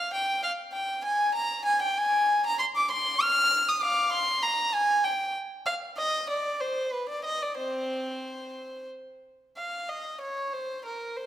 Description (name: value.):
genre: classical, baroque-style suite movement for unaccompanied violin.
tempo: 96 BPM.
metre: 3/4.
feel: rubato.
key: C minor.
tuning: A4 = 439 Hz.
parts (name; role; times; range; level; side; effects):
warm violin; solo; 0.0-11.3 s; C4 to F6; -25 LUFS; equal; none.
room: wet recital hall reverb, RT60 1.5 s.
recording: none.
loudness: -25 LUFS.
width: side -12 dB against mid.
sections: 0.0-9.6 A section; 9.6-11.3 A section.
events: none.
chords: none.